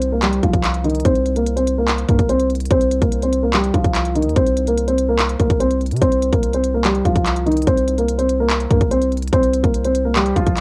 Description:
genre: hip hop, trap.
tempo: 145 BPM.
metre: 4/4.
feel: half-time.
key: C minor.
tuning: A4 = 441 Hz.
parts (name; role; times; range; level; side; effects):
felt-muted upright piano; melody; 0.0-10.6 s; Eb3 to C5; -20 LUFS; equal; low-pass filter, cassette tape, analog delay.
long sustained 808-style bass; bass; 0.0-10.6 s; C2 to C3; -24 LUFS; equal; none.
trap drum kit; drums; 0.0-10.6 s; handclaps, hi-hat, kick drum; -22 LUFS; equal; none.
downlifter; sound effects; 0.0-1.1 s; none; barely audible; none; none.
room: light reverb.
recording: home recording on cassette.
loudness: -17 LUFS.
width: mono.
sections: 0.0-10.6 A section.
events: filter sweep on felt piano 0.0-10.6.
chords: 0.0 C7(no3).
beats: 0.22 0.64 | 1.05 1.47 1.88 2.29 | 2.71 3.12 3.53 3.95 | 4.36 4.78 5.19 5.60 | 6.02 6.43 6.84 7.26 | 7.67 8.09 8.50 8.91 | 9.33 9.74 10.15 10.57.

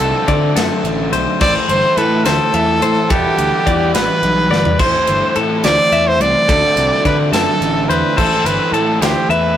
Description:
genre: math rock and midwest emo.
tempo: 71 BPM (dotted quarters).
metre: 6/8.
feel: straight.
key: unclear.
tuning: A4 = 441 Hz.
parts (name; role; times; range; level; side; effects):
bright trumpet; melody; 0.0-9.6 s; G4 to D5; -16 LUFS; right 2 dB; none.
clean electric guitar; arpeggios; 0.0-9.6 s; A4 to E5; -20 LUFS; left 6 dB; none.
raw garage guitar; riff; 0.0-9.6 s; A2 to F#4; -20 LUFS; equal; overdrive.
fuzz picked electric bass; bass; 0.0-9.5 s; E1 to D3; -20 LUFS; equal; overdrive.
modern studio drum kit; drums; 0.0-9.4 s; crash cymbal, kick drum, ride cymbal, snare drum, toms; -20 LUFS; equal; none.
room: light reverb.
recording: rough rehearsal-room recording, warm saturation.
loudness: -12 LUFS.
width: side -10 dB against mid.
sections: 0.0-9.6 A section.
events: drum fill 4.5.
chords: 0.0 D7; 1.4 Am; 3.1 Em7; 4.8 Am; 6.5 D7; 8.2 Am7.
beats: 0.56 | 1.41 2.26 | 3.10 3.95 | 4.79 5.64 | 6.49 7.33 | 8.18 9.02.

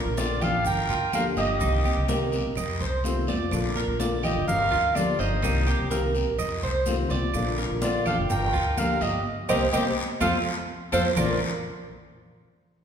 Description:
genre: latin, Cuban son and guajira.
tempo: 126 BPM.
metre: 4/4.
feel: straight.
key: Bb major.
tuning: A4 = 440 Hz.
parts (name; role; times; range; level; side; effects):
nylon-string guitar; accompaniment; 0.0-11.4 s; Bb2 to G4; -31 LUFS; left 3 dB; none.
Cuban tres; arpeggios; 0.0-11.4 s; Bb3 to Eb5; -30 LUFS; right 4 dB; none.
upright bass; bass; 0.0-11.4 s; G1 to F2; -28 LUFS; equal; none.
warm clarinet; melody; 0.2-11.4 s; C5 to G5; -28 LUFS; right 2 dB; none.
bright trumpet; second line; 0.2-11.4 s; Eb4 to Bb4; -35 LUFS; left 5 dB; none.
congas; percussion; 0.2-11.3 s; none; -33 LUFS; left 2 dB; none.
guiro; percussion; 0.2-11.3 s; none; -37 LUFS; left 4 dB; none.
maracas; percussion; 0.2-11.3 s; none; -43 LUFS; right 6 dB; none.
claves; percussion; 0.4-11.3 s; none; -40 LUFS; right 6 dB; none.
room: wet recital hall reverb, RT60 1.7 s.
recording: recorded in a church or concert hall.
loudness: -22 LUFS.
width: side -8 dB against mid.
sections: 0.0-11.2 A section; 11.2-12.8 B section.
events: band accent 9.3-11.2.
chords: 0.0 Bb; 0.7 Gm7; 1.6 Cm7; 2.6 F7; 3.5 Bb; 4.5 Gm7; 5.4 Cm7; 6.4 F7; 7.3 Bb; 8.3 Gm7; 9.3 Cm7; 10.2 F; 11.2 Bb.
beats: 0.18 0.65 1.13 | 1.61 2.09 2.56 3.04 | 3.52 4.00 4.47 4.95 | 5.43 5.91 6.38 6.86 | 7.34 7.82 8.30 8.78 | 9.25 9.73 10.21 10.69 | 11.17.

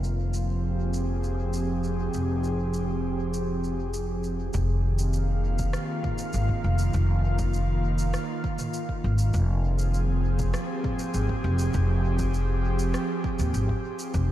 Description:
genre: ambient dub.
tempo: 100 BPM.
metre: 4/4.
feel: straight.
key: F minor.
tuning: A4 = 439 Hz.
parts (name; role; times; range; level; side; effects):
airy breathy pad; sustained chords; 0.0-14.3 s; Eb3 to F5; -29 LUFS; right 1 dB; chorus.
upright bass; bass; 0.0-14.3 s; F1 to Eb2; -25 LUFS; equal; none.
organic electronic drum kit; drums; 0.0-14.3 s; rim click, shaker, toms; -40 LUFS; equal; dub echo.
electronic kick drum; drums; 4.5-14.3 s; none; -32 LUFS; equal; overdrive.
room: light reverb, digital ambience.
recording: none.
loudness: -24 LUFS.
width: side -13 dB against mid.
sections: 0.0-4.5 A section; 4.5-14.3 B section.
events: none.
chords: 0.0 Fmadd9.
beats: 0.34 0.94 1.54 | 2.14 2.74 3.34 3.94 | 4.54 5.14 5.74 6.34 | 6.94 7.54 8.14 8.74 | 9.34 9.94 10.54 11.14 | 11.74 12.34 12.94 13.54 | 14.14.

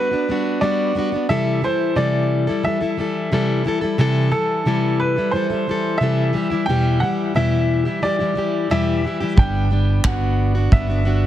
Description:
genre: acoustic pop.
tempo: 89 BPM.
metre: 4/4.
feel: straight.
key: unclear.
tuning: A4 = 440 Hz.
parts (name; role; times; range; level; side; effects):
warm upright piano; melody; 0.0-11.3 s; A4 to G5; -23 LUFS; right 1 dB; ping-pong delay.
fingerpicked plugged-in steel-string acoustic guitar; accompaniment; 0.0-11.3 s; E2 to A4; -19 LUFS; left 1 dB; none.
vintage muted fingered electric bass; bass; 9.4-11.3 s; G1; -18 LUFS; right 1 dB; none.
unplugged drum kit; drums; 9.4-10.9 s; handclaps, kick drum; -16 LUFS; right 1 dB; none.
room: moderate small room reverb, RT60 0.5 s.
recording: dense, heavily limited modern master.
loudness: -17 LUFS.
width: side -12 dB against mid.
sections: 0.0-11.3 A section.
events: none.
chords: 0.0 Gmaj7; 1.3 C6; 6.3 Em; 9.4 Gmaj7.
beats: 0.61 | 1.29 1.96 2.64 3.31 | 3.98 4.66 5.33 6.01 | 6.68 7.35 8.03 8.70 | 9.37 10.05 10.72.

